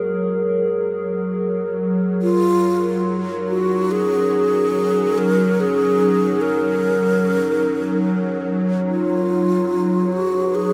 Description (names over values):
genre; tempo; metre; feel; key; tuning
ambient; free time; none; none; unclear; A4 = 440 Hz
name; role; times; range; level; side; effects
warbly tape-like pad; sustained chords; 0.0-10.7 s; F#3 to C#5; -23 LUFS; equal; chorus, built-in reverb
bowed-like drone; drone; 0.0-10.7 s; F#3; -32 LUFS; equal; built-in reverb
mellow hollow alto flute; melody; 2.2-10.7 s; E#4 to A#4; -21 LUFS; equal; delay
room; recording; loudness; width
wet huge ambient reverb, RT60 8.2 s; none; -19 LUFS; mono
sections
0.0-10.7 A section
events
fade-in on synth drone 0.0-10.7; filter sweep on ambient pad 0.0-10.7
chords
0.0 F#add9; 2.2 D#m7/F#; 8.9 B6/F#